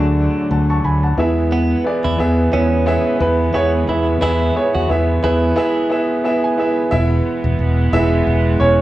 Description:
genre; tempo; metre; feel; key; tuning
piano-driven pop; 89 BPM; 4/4; swing 56% on 16ths; unclear; A4 = 440 Hz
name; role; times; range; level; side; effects
bright concert grand piano; accompaniment; 0.0-8.8 s; D3 to C#6; -17 LUFS; equal; none
warm studio string section; sustained chords; 0.0-8.8 s; D3 to B3; -24 LUFS; right 2 dB; none
direct-recorded clean electric guitar; riff; 0.0-5.9 s; B3 to F#4; -22 LUFS; right 3 dB; none
fingered electric bass; bass; 0.0-8.8 s; E1 to E2; -17 LUFS; equal; none
room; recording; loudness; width
moderate large studio reverb, RT60 1.0 s; worn, warbling old tape, cassette tape, warbly pitch drift, small room ambience; -14 LUFS; side -15 dB against mid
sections
0.0-6.9 A section; 6.9-8.8 B section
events
grand piano fill 5.9-6.9; grand piano solo 6.9-8.8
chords
0.0 D; 1.2 E

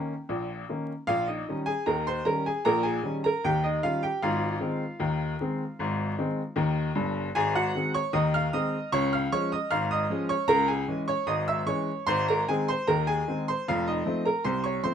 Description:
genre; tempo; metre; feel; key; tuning
ragtime piano; 76 BPM; 2/4; straight; Ab major; A4 = 436 Hz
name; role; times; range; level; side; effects
bright upright piano; solo; 0.0-14.9 s; F1 to F6; -25 LUFS; equal; none
room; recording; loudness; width
light reverb; close, detailed microphones, vinyl crackle; -25 LUFS; side -8 dB against mid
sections
0.0-14.9 A section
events
none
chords
0.0 Eb7; 1.1 Eb7/Bb; 4.2 Ab; 7.4 Ab7; 8.9 Db; 10.5 Dbm; 12.1 Ab; 13.6 F7

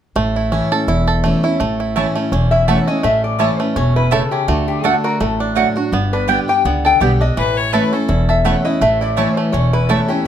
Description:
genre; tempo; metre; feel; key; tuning
bluegrass; 166 BPM; 4/4; swing 55% on 8ths; A mixolydian; A4 = 440 Hz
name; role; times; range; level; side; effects
bluegrass banjo; melody; 0.2-10.3 s; E3 to A4; -22 LUFS; right 5 dB; plate reverb
picked steel-string acoustic guitar; accompaniment; 0.2-10.3 s; E2 to G4; -19 LUFS; equal; none
upright bass; bass; 0.2-10.0 s; E1 to D2; -19 LUFS; equal; none
mandolin; stabs; 2.0-10.0 s; A3 to A5; -18 LUFS; right 6 dB; none
lap resonator guitar; melody; 2.5-10.2 s; F#4 to G5; -18 LUFS; left 4 dB; plate reverb
clear fiddle; second line; 7.4-8.2 s; A4 to C#5; -20 LUFS; left 6 dB; none
room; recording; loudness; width
moderate studio ambience, RT60 0.5 s; none; -14 LUFS; side -10 dB against mid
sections
0.2-1.6 A section; 1.6-10.3 B section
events
none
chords
0.2 A; 4.5 D; 5.9 G; 7.4 A

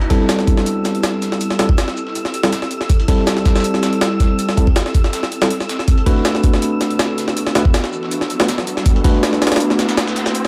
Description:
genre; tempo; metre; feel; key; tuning
drum and bass, jungle; 161 BPM; 4/4; straight; A dorian; A4 = 440 Hz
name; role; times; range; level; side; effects
ethereal airy pad; sustained chords; 0.0-10.5 s; B3 to A4; -28 LUFS; equal; none
dusty soul sampler-style drum kit; drums; 0.0-10.5 s; hi-hat, shaker, snare drum; -32 LUFS; equal; overdrive, high-pass filter on perc, high-pass filter on hats, high-pass filter on snare, high-pass filter on room
wind-like tuned noise texture; texture; 0.4-10.5 s; E6; -32 LUFS; equal; built-in reverb
tine electric piano; stabs; 0.1-10.5 s; G3 to B4; -22 LUFS; equal; low-pass filter, dub echo
jungle sampler-style drum kit; drums; 0.1-10.5 s; hi-hat, kick drum, snare drum; -19 LUFS; equal; none
riser; sound effects; 7.2-10.5 s; none; -31 LUFS; equal; none
room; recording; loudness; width
light reverb; vinyl crackle; -17 LUFS; mono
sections
0.0-10.5 A section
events
build-up 0.0-10.5; riser 7.2-10.5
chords
0.0 Am7; 5.9 Bm7

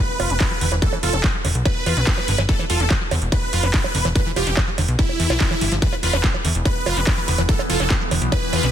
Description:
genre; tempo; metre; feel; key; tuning
psychedelic trance; 144 BPM; 4/4; straight; E phrygian; A4 = 440 Hz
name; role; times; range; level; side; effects
dense compressed supersaw; melody; 0.0-8.7 s; E4 to B4; -25 LUFS; right 1 dB; phaser, sidechain pumping, tape echo
sub drop; sound effects; 0.0-0.8 s; none; barely audible; none; none
liquid acid bass; riff; 0.2-8.7 s; D3 to F4; -27 LUFS; equal; chorus, auto-pan, cassette tape, sidechain pumping, tape echo
plucky analog bass; bass; 0.2-8.7 s; E1 to E2; -21 LUFS; equal; none
big-room dance drum kit; drums; 0.2-8.7 s; bongos, handclaps, hi-hat; -25 LUFS; right 4 dB; none
electronic kick drum; drums; 0.4-8.4 s; none; -21 LUFS; equal; distortion
overtone-sweeping drone; sustained chords; 6.5-8.7 s; E3 to B3; -31 LUFS; right 2 dB; chorus, built-in reverb, phaser, sidechain pumping
room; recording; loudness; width
digital ambience; dense, heavily limited modern master; -17 LUFS; side -10 dB against mid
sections
0.0-8.7 A section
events
impact 0.0-0.8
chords
0.0 E5

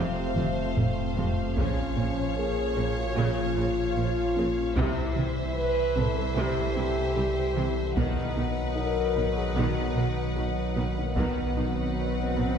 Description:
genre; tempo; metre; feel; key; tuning
cinematic, hybrid orchestral and electronic film score; 75 BPM; 4/4; straight; unclear; A4 = 438 Hz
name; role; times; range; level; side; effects
rich symphonic violin section; melody; 0.0-12.6 s; E5 to F#5; -38 LUFS; left 4 dB; none
rich symphonic violin section; second line; 0.0-12.6 s; B4 to Db5; -37 LUFS; left 1 dB; none
rich symphonic viola section; accompaniment; 0.0-12.4 s; C3 to F3; -37 LUFS; right 1 dB; none
clear trombone section; sustained chords; 0.0-12.6 s; E3 to E4; -37 LUFS; right 2 dB; none
mellow French horn section; sustained chords; 0.0-12.6 s; A3 to Cb5; -31 LUFS; left 2 dB; none
warbly tape-like pad; sustained chords; 0.0-12.6 s; C3 to E5; -36 LUFS; right 1 dB; chorus, built-in reverb
warbly dusty pluck; arpeggios; 0.0-12.6 s; C3 to B4; -39 LUFS; right 1 dB; none
clear symphonic double bass section; bass; 0.0-12.4 s; F1 to C2; -36 LUFS; right 4 dB; none
rich symphonic cello section; bass; 0.0-12.4 s; F2 to C3; -34 LUFS; right 2 dB; none
warm sub bass; bass; 0.0-12.6 s; F1 to C2; -33 LUFS; equal; none
dark grand piano; texture; 0.0-12.6 s; Bb3 to Db5; -43 LUFS; equal; none
taiko ensemble; drums; 0.4-12.6 s; none; -32 LUFS; equal; none
swell; sound effects; 11.7-12.6 s; none; -35 LUFS; right 4 dB; none
room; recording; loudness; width
wet scoring stage reverb, RT60 1.9 s; heard from further back in the room; -25 LUFS; side -7 dB against mid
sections
0.0-12.6 A section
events
drum fill 0.4-1.6; swell 11.7-12.6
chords
0.0 F; 1.6 Bbm; 4.8 C; 8.0 B

